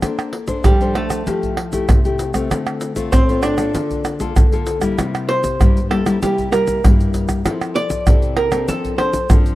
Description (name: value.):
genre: samba and choro.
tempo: 97 BPM.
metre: 4/4.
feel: straight.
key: F major.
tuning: A4 = 440 Hz.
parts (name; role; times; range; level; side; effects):
nylon-string guitar; accompaniment; 0.0-9.6 s; G2 to C5; -21 LUFS; left 3 dB; none.
tube shaker, surdo, pandeiro and tamborim; percussion; 0.0-9.6 s; none; -17 LUFS; equal; none.
archtop guitar, miked and amplified; second line; 0.7-9.3 s; G3 to D5; -20 LUFS; right 2 dB; none.
room: small room ambience.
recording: dry, close 1970s-style studio recording.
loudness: -15 LUFS.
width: side -16 dB against mid.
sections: 0.0-9.6 A section.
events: hollow-body jazz guitar solo 0.0-9.6.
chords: 0.0 Bbmaj9; 1.3 Fmaj9; 2.5 Dm7; 3.7 Bbmaj7/D; 5.0 C7; 7.5 Fmaj7; 8.7 Dm7/F.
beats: | 0.02 0.64 1.26 1.88 | 2.50 3.12 3.74 4.36 | 4.98 5.60 6.22 6.83 | 7.45 8.07 8.69 9.30.